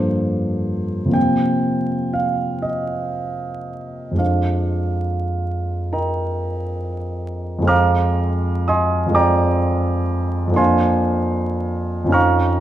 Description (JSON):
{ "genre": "classical, impressionist solo piano", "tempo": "33-43 BPM (dotted quarters)", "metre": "6/8", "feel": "rubato", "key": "F dorian", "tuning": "A4 = 444 Hz", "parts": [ { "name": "clear concert grand piano", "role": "solo", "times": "0.0-12.6 s", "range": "F2 to F6", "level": "-17 LUFS", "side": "right 1 dB", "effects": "none" } ], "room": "wet recital hall reverb, RT60 1.5 s", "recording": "vinyl crackle", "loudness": "-17 LUFS", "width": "side -12 dB against mid", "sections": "0.0-7.7 A section; 7.7-12.6 A section", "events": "none", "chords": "0.0 Gm11; 1.2 C7sus4; 4.2 Fm6; 10.6 Bbadd9/F", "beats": "| 1.15 2.64 | 4.20 5.95 | 7.71 9.17 | 10.59 12.15" }